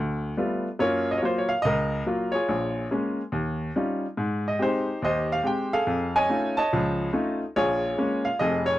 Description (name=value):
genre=solo jazz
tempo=142 BPM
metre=4/4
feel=swing 66% on 8ths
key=Bb minor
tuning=A4 = 440 Hz
part: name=clear upright piano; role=solo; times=0.0-8.8 s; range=F1 to A5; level=-23 LUFS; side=equal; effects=none
room=little or no reverb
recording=dry, close 1970s-style studio recording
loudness=-23 LUFS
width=side -14 dB against mid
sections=0.0-8.8 A section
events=none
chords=0.0 G9; 0.8 Gbmaj7; 2.5 Bbm7; 3.3 Eb9; 4.2 Abmaj7; 5.9 F7alt; 7.6 Bbm7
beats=0.38 | 0.80 1.22 1.64 2.06 | 2.48 2.91 3.33 3.75 | 4.17 4.59 5.02 5.44 | 5.86 6.29 6.71 7.13 | 7.55 7.97 8.40